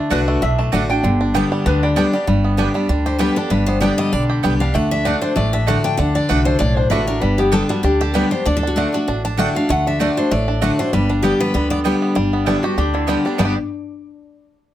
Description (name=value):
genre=bluegrass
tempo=194 BPM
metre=4/4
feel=swing 55% on 8ths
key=G major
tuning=A4 = 440 Hz
part: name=bluegrass banjo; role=melody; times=0.0-13.6 s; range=D3 to G4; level=-23 LUFS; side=right 3 dB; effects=none
part: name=picked steel-string acoustic guitar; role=accompaniment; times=0.0-13.5 s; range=G2 to G4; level=-19 LUFS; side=left 2 dB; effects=none
part: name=lap resonator guitar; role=second line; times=0.1-2.3, 12.2-13.5 s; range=D4 to A5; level=-24 LUFS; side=left 2 dB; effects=none
part: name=mandolin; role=stabs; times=0.1-13.5 s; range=A3 to G5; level=-24 LUFS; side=right 7 dB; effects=none
part: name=upright bass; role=bass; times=0.1-13.5 s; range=G1 to D2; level=-21 LUFS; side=equal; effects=none
part: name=picked steel-string acoustic guitar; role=melody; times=3.1-13.5 s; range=D4 to A5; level=-22 LUFS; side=left 2 dB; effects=none
room=moderate studio ambience, RT60 0.5 s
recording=none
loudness=-15 LUFS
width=side -12 dB against mid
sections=0.0-2.3 A section; 2.3-12.2 B section; 12.2-13.4 C section; 13.4-14.6 D section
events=resonator guitar played with a steel bar solo 0.0-2.3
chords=0.0 D; 1.0 G; 4.7 D; 7.2 G; 8.5 D; 10.9 G